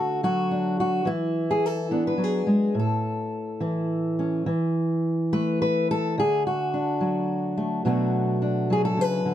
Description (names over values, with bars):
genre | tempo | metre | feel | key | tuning
folk, solo fingerstyle acoustic guitar | 107 BPM | 3/4 | straight | unclear | A4 = 440 Hz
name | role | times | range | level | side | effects
fingerpicked steel-string acoustic guitar | solo | 0.0-9.3 s | A2 to B4 | -22 LUFS | equal | none
room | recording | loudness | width
light reverb | dark, warm production | -22 LUFS | side -11 dB against mid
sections
0.0-4.5 A section; 4.5-9.3 B section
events
none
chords
0.0 D; 1.1 E7; 2.8 A; 4.5 Esus4; 6.2 D; 7.9 Bm7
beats
0.52 | 1.08 1.64 2.20 | 2.77 3.33 3.90 | 4.48 5.04 5.61 | 6.17 6.73 7.29 | 7.85 8.41 8.97